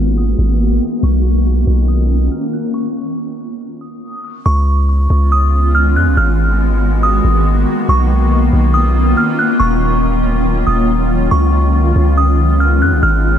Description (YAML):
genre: hip hop, atmospheric cloud-rap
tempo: 140 BPM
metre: 4/4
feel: half-time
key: unclear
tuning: A4 = 440 Hz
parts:
  - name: delicate synth tine bell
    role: melody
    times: 0.0-13.4 s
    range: C#6 to F#6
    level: -18 LUFS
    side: right 1 dB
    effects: chorus, low-pass filter, ping-pong delay
  - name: granular cloud pad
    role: sustained chords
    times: 0.0-13.4 s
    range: D#3 to F#4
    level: -17 LUFS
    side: left 1 dB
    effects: built-in reverb
  - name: long sustained 808-style bass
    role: bass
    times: 0.0-13.4 s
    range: D#1 to E#2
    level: -13 LUFS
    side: equal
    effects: none
room: light reverb, digital ambience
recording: low-pass filter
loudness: -11 LUFS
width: side -9 dB against mid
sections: 0.0-4.5 A section; 4.5-13.4 B section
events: filter sweep 0.0-4.5; stop 2.7-4.5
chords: 0.0 G#m9; 1.0 Bmaj9#11; 2.7 N.C.; 4.5 C#9; 6.2 G#m9; 7.9 Bmaj9#11; 9.6 D#m9; 11.3 C#9